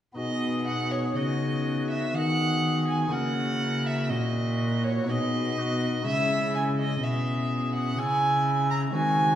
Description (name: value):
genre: classical, baroque-style sonata movement with continuo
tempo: 62 BPM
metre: 3/4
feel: rubato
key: B major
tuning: A4 = 440 Hz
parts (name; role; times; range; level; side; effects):
- chamber organ, flutes; accompaniment; 0.1-9.4 s; A#2 to F#4; -29 LUFS; left 2 dB; none
- warm oboe; melody; 0.2-9.4 s; E4 to A#4; -35 LUFS; left 4 dB; none
- rich violin; second line; 0.2-9.4 s; C#5 to A#5; -28 LUFS; right 2 dB; none
- rich cello; bass; 0.2-9.4 s; A#2 to D#3; -29 LUFS; equal; none
room: wet recital hall reverb, RT60 1.7 s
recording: heard from further back in the room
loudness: -24 LUFS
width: side -11 dB against mid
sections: 0.2-9.4 A section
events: none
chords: 0.2 B; 3.1 F#7/C#; 5.1 B; 6.1 C#m